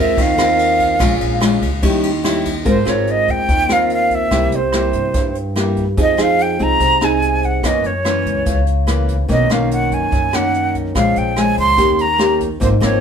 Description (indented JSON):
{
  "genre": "bossa nova",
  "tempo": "145 BPM",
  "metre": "4/4",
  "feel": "straight",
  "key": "Ab major",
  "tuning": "A4 = 440 Hz",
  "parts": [
    { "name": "breathy jazz flute", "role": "melody", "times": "0.0-13.0 s", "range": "C5 to C6", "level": "-17 LUFS", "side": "right 2 dB", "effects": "none" },
    { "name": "nylon-string guitar", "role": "accompaniment", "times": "0.0-13.0 s", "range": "Gb2 to Bb4", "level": "-18 LUFS", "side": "left 1 dB", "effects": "none" },
    { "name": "upright bass", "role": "bass", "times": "0.0-13.0 s", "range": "Ab1 to G2", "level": "-21 LUFS", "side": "equal", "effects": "none" },
    { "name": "jazz brush drum kit", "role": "drums", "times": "0.2-12.9 s", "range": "hi-hat, kick drum, ride cymbal, rim click", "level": "-23 LUFS", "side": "equal", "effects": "none" }
  ],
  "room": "moderate studio reverb, RT60 0.7 s",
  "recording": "band playing live in one room",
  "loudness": "-13 LUFS",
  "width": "side -7 dB against mid",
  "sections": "0.0-2.7 A section; 2.7-13.0 B section",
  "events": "flute solo 0.0-2.7",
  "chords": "0.0 Ab69; 1.0 Bbm7; 1.8 Eb7b9; 2.7 Ab69; 4.3 C7; 6.0 Fm7; 7.6 Gb7; 9.3 Bmaj9; 10.9 Bbm7; 11.8 Eb7"
}